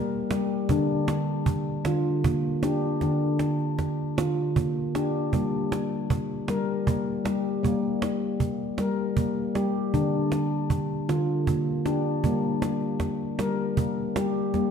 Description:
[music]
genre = world meditative, meditative tuned percussion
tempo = 52 BPM (dotted quarters)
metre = 6/8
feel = straight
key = G minor pentatonic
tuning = A4 = 445 Hz
[part]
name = handpan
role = arpeggios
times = 0.0-14.7 s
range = D3 to Bb4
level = -25 LUFS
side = left 1 dB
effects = none
[part]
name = cajon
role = percussion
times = 0.3-14.7 s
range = none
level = -30 LUFS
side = right 4 dB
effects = none
[sound]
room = wet scoring stage reverb, RT60 1.6 s, small room ambience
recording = dark, warm production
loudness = -24 LUFS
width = side -7 dB against mid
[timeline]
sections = 0.0-14.5 A section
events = none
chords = 0.0 Gm; 0.7 Dm; 5.3 Gm; 9.9 Dm; 12.2 Gm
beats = | 0.70 1.86 | 3.02 4.17 | 5.33 6.48 | 7.64 8.79 | 9.94 11.10 | 12.25 13.40 | 14.55

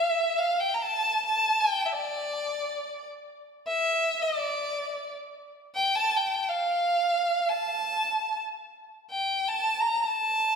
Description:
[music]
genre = Turkish makam ensemble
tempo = free time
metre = none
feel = none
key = D makam nihavent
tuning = A4 = 438 Hz
[part]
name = clear violin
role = solo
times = 0.0-10.6 s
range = D5 to Bb5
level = -25 LUFS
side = equal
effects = none
[sound]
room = wet concert hall reverb, RT60 2.2 s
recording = recorded in a church or concert hall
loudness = -25 LUFS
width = side -6 dB against mid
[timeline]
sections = 0.0-5.3 A section; 5.3-10.6 A section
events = none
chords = none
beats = free time

